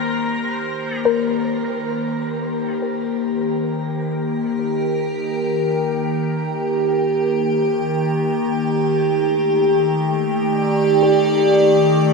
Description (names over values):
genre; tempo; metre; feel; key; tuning
ambient; free time; none; none; unclear; A4 = 442 Hz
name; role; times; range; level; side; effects
pedal steel guitar; melody; 0.0-1.0 s; Bb4; -32 LUFS; left 1 dB; ping-pong delay
evolving wavetable pad; sustained chords; 0.0-12.1 s; Eb3 to D5; -17 LUFS; equal; phaser, built-in reverb
soft round pluck; arpeggios; 1.1-4.7, 11.0-12.1 s; G4 to Bb4; -25 LUFS; left 3 dB; wide subtle chorus, ping-pong delay
room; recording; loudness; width
wet shimmer reverb, RT60 9.4 s; none; -17 LUFS; side -3 dB against mid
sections
0.0-12.1 A section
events
fade-in on ambient pad 0.0-12.1; fade-out on synth pluck 0.0-12.1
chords
0.0 Eb6; 8.7 Ebmaj7#11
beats
free time